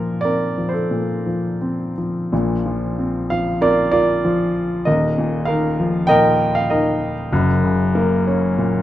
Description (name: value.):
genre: classical, lyrical solo piano.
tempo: 83-101 BPM.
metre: 4/4.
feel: rubato.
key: unclear.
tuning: A4 = 437 Hz.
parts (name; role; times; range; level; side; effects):
warm concert grand piano; solo; 0.0-8.8 s; Eb1 to G5; -16 LUFS; equal; none.
room: wet recital hall reverb, RT60 1.3 s.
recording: dark, warm production.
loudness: -16 LUFS.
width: side -13 dB against mid.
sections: 0.0-2.3 A section; 2.3-8.8 B section.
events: none.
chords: 0.0 Bbsus2; 4.9 Ebsus2; 7.3 Gb.